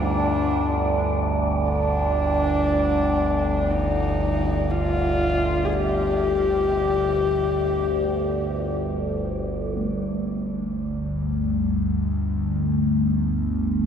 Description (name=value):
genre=dark ambient drone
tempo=free time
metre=none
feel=none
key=unclear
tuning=A4 = 438 Hz
part: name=warm horsehead fiddle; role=melody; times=0.0-8.8 s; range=D4 to Ab4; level=-25 LUFS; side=left 3 dB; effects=ping-pong delay
part: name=overtone-sweeping drone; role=drone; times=0.0-13.9 s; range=G1 to D2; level=-23 LUFS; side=equal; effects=chorus, built-in reverb
part: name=wind-like tuned noise texture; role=texture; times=0.0-9.8 s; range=D5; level=-30 LUFS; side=right 2 dB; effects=built-in reverb
room=wet cathedral reverb, RT60 5.4 s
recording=dark, warm production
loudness=-21 LUFS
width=side -8 dB against mid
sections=0.0-9.8 A section; 9.8-13.9 B section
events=filter sweep on synth drone 0.0-9.8, 9.8-13.9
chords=0.0 G5